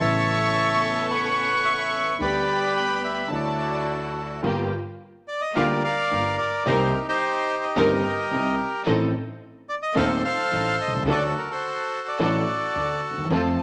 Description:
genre	tango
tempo	108 BPM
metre	4/4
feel	rubato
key	G minor from 4.4 s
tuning	A4 = 441 Hz
part	bandoneon	melody	0.0-13.3 s	Eb4 to A5	-27 LUFS	equal	none
part	warm chamber violin section	second line	0.0-4.2, 13.3-13.6 s	A5 to C#6	-29 LUFS	equal	none
part	dark grand piano	accompaniment	0.0-13.5 s	Eb1 to A4	-29 LUFS	equal	none
part	rich symphonic string section	stabs	0.0-13.5 s	Bb3 to Bb4	-32 LUFS	equal	none
part	upright bass	bass	0.0-13.5 s	G1 to F2	-36 LUFS	equal	none
room	moderate large studio reverb, RT60 1.2 s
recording	none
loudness	-24 LUFS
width	mono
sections	0.0-4.4 A section; 4.4-13.6 B section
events	none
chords	0.0 Aadd9; 2.2 G/D; 3.3 Dadd9; 4.4 Gm7; 6.7 Cm7; 8.9 Adim; 11.1 D

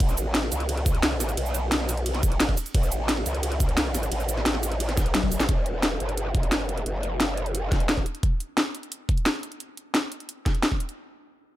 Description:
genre	dark technical drum and bass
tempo	175 BPM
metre	4/4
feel	straight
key	E dorian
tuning	A4 = 436 Hz
part	growl bass	bass	0.0-8.0 s	E1 to C#2	-27 LUFS	equal	chorus, overdrive
part	drum and bass drum kit	drums	0.0-11.0 s	cabasa, hi-hat, ride cymbal, snare drum, toms	-26 LUFS	equal	overdrive
part	electronic kick drum	drums	0.0-10.8 s	none	-24 LUFS	equal	overdrive
room	little or no reverb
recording	none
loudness	-23 LUFS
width	side -14 dB against mid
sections	0.0-5.5 A section; 5.5-11.0 B section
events	drop 0.0-5.5; drum fill 5.1-5.5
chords	none

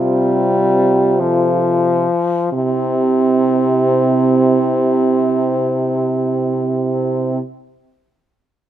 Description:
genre	classical, lyrical piece for horn quartet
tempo	free time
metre	none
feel	none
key	C major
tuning	A4 = 435 Hz
part	warm French horn	melody	0.0-7.4 s	C4 to A4	-25 LUFS	left 6 dB	none
part	mellow French horn	second line	0.0-7.4 s	C4 to F4	-21 LUFS	right 5 dB	none
part	clear French horn	accompaniment	0.0-7.4 s	C3 to G3	-16 LUFS	left 1 dB	none
part	mellow French horn	bass	0.0-7.4 s	C3	-21 LUFS	right 3 dB	none
room	moderate stone room reverb, RT60 1.1 s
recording	close, detailed microphones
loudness	-13 LUFS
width	side -11 dB against mid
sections	0.0-2.5 A section; 2.5-7.6 B section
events	slowing down 0.0-2.5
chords	0.0 F/C; 2.5 C

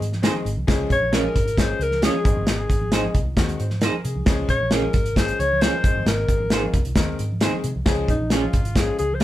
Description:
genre	uptempo 1960s-style soul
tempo	134 BPM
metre	4/4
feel	straight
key	Db major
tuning	A4 = 438 Hz
part	vintage muted fingered electric bass	bass	0.0-9.2 s	G1 to C3	-26 LUFS	equal	none
part	natural country drum kit	drums	0.0-9.2 s	hi-hat, kick drum, snare drum	-21 LUFS	equal	none
part	congas	percussion	0.0-9.2 s	none	-35 LUFS	right 2 dB	none
part	bright concert grand piano	accompaniment	0.2-9.2 s	Eb3 to C5	-29 LUFS	left 3 dB	none
part	semi-hollow electric guitar	stabs	0.2-9.2 s	C4 to Db5	-25 LUFS	right 5 dB	none
part	mellow alto saxophone	melody	0.9-9.2 s	Eb4 to Db5	-24 LUFS	left 2 dB	none
room	moderate studio ambience, RT60 0.5 s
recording	band playing live in one room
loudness	-18 LUFS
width	side -14 dB against mid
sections	0.0-9.2 A section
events	none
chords	0.0 Ab; 0.7 Db; 2.2 Ab; 4.3 Db; 5.8 Ab; 7.9 Db

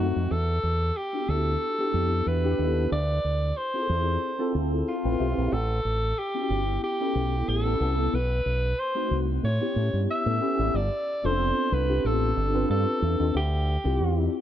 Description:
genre	polished 1980s jazz-funk pop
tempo	92 BPM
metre	4/4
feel	swing 54% on 16ths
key	D dorian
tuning	A4 = 441 Hz
part	breathy alto saxophone	melody	0.0-14.3 s	F4 to E5	-28 LUFS	equal	none
part	mellow tine electric piano	accompaniment	0.0-14.4 s	A3 to E5	-29 LUFS	left 2 dB	slow stereo tremolo, ensemble chorus
part	fingered electric bass with an envelope filter	bass	0.0-14.3 s	F1 to A2	-26 LUFS	equal	none
room	light reverb, small room reverb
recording	none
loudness	-23 LUFS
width	side -11 dB against mid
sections	0.0-10.7 A section; 10.7-14.4 B section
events	none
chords	0.3 Em7; 2.9 Dm9; 5.5 A7; 8.1 B7b9; 9.4 A7; 10.7 G7sus4; 13.3 Dm11

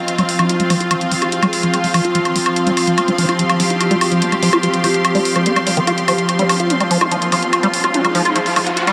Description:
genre	psychedelic trance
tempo	145 BPM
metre	4/4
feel	straight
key	unclear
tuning	A4 = 440 Hz
part	evolving wavetable pad	sustained chords	0.0-8.9 s	F3 to G4	-22 LUFS	equal	chorus, built-in reverb
part	rich symphonic string section	texture	0.0-8.9 s	C4 to C6	-23 LUFS	equal	none
part	electronic hi-hat and woodblock	drums	0.1-8.9 s	none	-22 LUFS	equal	high-pass filter on snare, high-pass filter on hats, high-pass filter on perc
part	liquid acid bass	riff	0.2-8.9 s	Eb3 to F4	-22 LUFS	equal	chorus, analog delay
part	vowel-sweep wobble bass	second line	0.4-8.5 s	Ab3 to F4	-33 LUFS	equal	none
part	riser	sound effects	7.2-8.9 s	none	-27 LUFS	equal	none
room	wet huge ambient reverb, RT60 4.0 s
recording	dreamy mix soaked in reverb, high-pass filter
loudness	-16 LUFS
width	mono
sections	0.0-8.9 A section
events	build-up 0.0-8.9; filter sweep on acid bass 0.0-8.9; riser 7.2-8.9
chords	0.0 F5

